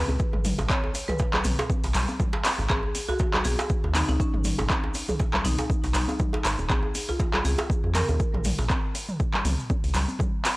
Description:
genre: afro house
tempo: 120 BPM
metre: 4/4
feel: swing 56% on 16ths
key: G# dorian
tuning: A4 = 437 Hz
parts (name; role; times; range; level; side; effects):
- marimba with medium hard mallets; melody; 0.0-8.4 s; C#4 to C#5; -33 LUFS; left 1 dB; analog delay
- round analog bass; bass; 0.0-10.1 s; D#1 to E#2; -26 LUFS; equal; sidechain pumping
- congas; percussion; 0.1-10.6 s; none; -34 LUFS; left 1 dB; none
- djembe; percussion; 0.1-8.7 s; none; -33 LUFS; right 1 dB; none
- maracas; percussion; 0.1-10.6 s; none; -41 LUFS; right 2 dB; none
- electronic kick drum; drums; 0.2-10.3 s; none; -27 LUFS; equal; overdrive
- deep house drum kit; drums; 0.3-10.6 s; handclaps, hi-hat, toms; -28 LUFS; equal; overdrive
room: small room ambience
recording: dry, gritty hardware recording, transformer saturation, cassette tape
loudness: -23 LUFS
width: side -21 dB against mid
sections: 0.0-10.6 A section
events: none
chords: 0.0 G#m; 6.7 A#m

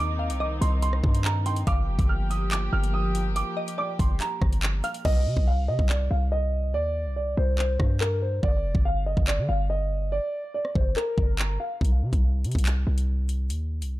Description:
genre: hip hop, drill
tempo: 142 BPM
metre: 4/4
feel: half-time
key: C minor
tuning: A4 = 439 Hz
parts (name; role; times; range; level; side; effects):
- dark grand piano; melody; 0.0-11.8 s; Bb4 to F6; -30 LUFS; right 1 dB; low-pass filter, ping-pong delay
- dark studio string section; sustained chords; 0.0-5.0 s; Eb3 to G4; -33 LUFS; left 1 dB; none
- hard-hitting 808-style bass; bass; 0.0-14.0 s; F1 to D3; -25 LUFS; equal; none
- glassy wavetable pluck; second line; 0.2-5.0 s; D5 to G5; -35 LUFS; left 1 dB; chorus, ping-pong delay
- drill drum kit; drums; 0.3-13.9 s; crash cymbal, handclaps, hi-hat, kick drum, rim click; -25 LUFS; equal; none
room: digital ambience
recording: dark, warm production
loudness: -23 LUFS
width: side -16 dB against mid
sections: 0.0-5.0 A section; 5.0-14.0 B section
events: hi-hats muted 5.0-11.8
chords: 0.0 Cmadd9; 1.7 Gm7; 5.0 Cmadd9; 8.4 G5; 11.8 Cm

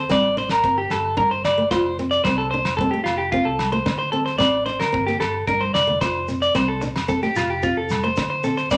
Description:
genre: highlife guitar band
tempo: 112 BPM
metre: 4/4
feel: straight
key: F major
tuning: A4 = 439 Hz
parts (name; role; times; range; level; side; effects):
- electric guitar at the edge of break-up; arpeggios; 0.0-8.8 s; F4 to D5; -23 LUFS; equal; none
- fingered electric bass; bass; 0.0-8.8 s; F1 to D2; -35 LUFS; equal; none
- nylon-string guitar; accompaniment; 0.1-8.8 s; A3 to F4; -28 LUFS; equal; none
- damped 70s drum kit; drums; 0.1-8.8 s; kick drum, snare drum; -32 LUFS; equal; none
- agogo bells; percussion; 0.1-8.8 s; none; -34 LUFS; equal; none
- congas; percussion; 0.1-8.8 s; none; -33 LUFS; equal; none
- shekere; percussion; 6.0-8.8 s; none; -39 LUFS; equal; none
room: moderate large studio reverb, RT60 0.8 s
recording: none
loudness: -21 LUFS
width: mono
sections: 0.0-8.8 A section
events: drum fill 5.5-6.0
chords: 0.0 D5; 0.6 Gm; 1.7 F; 3.9 D5; 4.9 Gm7; 6.0 F; 8.2 D5

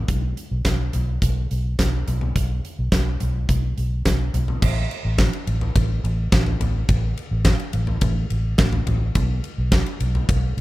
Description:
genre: piano-driven pop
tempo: 106 BPM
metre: 4/4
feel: straight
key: unclear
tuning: A4 = 442 Hz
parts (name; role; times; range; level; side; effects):
- vintage muted fingered electric bass; bass; 0.0-10.6 s; A1 to B1; -22 LUFS; equal; none
- huge arena drum kit; drums; 0.1-10.6 s; crash cymbal, hi-hat, kick drum, ride cymbal, snare drum, toms; -22 LUFS; equal; none
room: little or no reverb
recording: rough home demo mix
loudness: -19 LUFS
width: side -18 dB against mid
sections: 0.0-4.6 A section; 4.6-10.6 B section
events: none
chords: none

